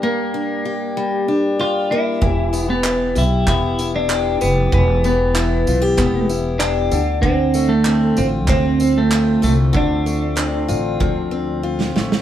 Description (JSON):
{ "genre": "acoustic pop", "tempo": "96 BPM", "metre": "4/4", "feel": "straight", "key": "D minor", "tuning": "A4 = 445 Hz", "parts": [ { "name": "twelve-string electric guitar", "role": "melody", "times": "0.0-11.6 s", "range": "A3 to F4", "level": "-19 LUFS", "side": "right 1 dB", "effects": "none" }, { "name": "picked acoustic archtop guitar", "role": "accompaniment", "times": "0.0-12.2 s", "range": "G2 to G4", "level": "-20 LUFS", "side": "left 2 dB", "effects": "none" }, { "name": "upright bass", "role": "bass", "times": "2.2-12.2 s", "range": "E1 to D2", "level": "-20 LUFS", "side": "equal", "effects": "none" }, { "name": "loose indie drum kit", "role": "drums", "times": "2.2-12.2 s", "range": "handclaps, kick drum, snare drum, tambourine", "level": "-23 LUFS", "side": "right 1 dB", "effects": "none" } ], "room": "light reverb", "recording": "band playing live in one room", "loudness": "-15 LUFS", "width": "side -11 dB against mid", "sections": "0.0-12.2 A section", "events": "drum fill 11.0-12.2", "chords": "0.0 Gm; 2.2 Em; 6.9 Dm7" }